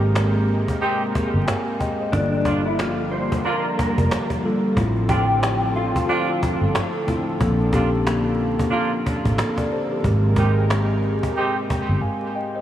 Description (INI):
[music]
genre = hip hop, boom-bap hip-hop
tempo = 91 BPM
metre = 4/4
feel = swing 60% on 16ths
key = unclear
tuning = A4 = 440 Hz
[part]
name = mellow tine electric piano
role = accompaniment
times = 0.0-12.6 s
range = G2 to Ab5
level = -25 LUFS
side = left 1 dB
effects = cassette tape, high-pass filter, low-pass filter
[part]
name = warm analog pad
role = sustained chords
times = 0.0-12.6 s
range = C3 to Bb4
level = -27 LUFS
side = right 1 dB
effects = chorus, high-pass filter, low-pass filter
[part]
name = vintage muted fingered electric bass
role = bass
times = 0.0-12.0 s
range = F1 to Bb1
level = -21 LUFS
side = equal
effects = none
[part]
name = cajon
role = drums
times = 0.2-11.9 s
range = none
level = -27 LUFS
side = equal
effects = none
[part]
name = clear horn section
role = stabs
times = 0.8-11.6 s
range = Bb3 to G4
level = -29 LUFS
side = right 2 dB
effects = high-pass filter, low-pass filter, tape echo
[part]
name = mellow electric guitar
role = melody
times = 2.1-6.9 s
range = D4 to C5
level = -26 LUFS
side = left 1 dB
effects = ensemble chorus, high-pass filter, low-pass filter, tape echo
[sound]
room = moderate huge ambient reverb, RT60 8.5 s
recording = dreamy mix soaked in reverb, vinyl crackle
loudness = -19 LUFS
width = side -11 dB against mid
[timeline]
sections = 0.0-12.6 A section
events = break 12.0-12.6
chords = 0.0 Abmaj9; 2.1 Gm7; 4.8 Dm7/A; 7.4 Bbmaj7; 10.0 Abmaj9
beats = 0.15 0.81 1.47 | 2.13 2.79 3.45 4.11 | 4.77 5.43 6.09 6.75 | 7.41 8.06 8.72 9.38 | 10.04 10.70 11.36 12.02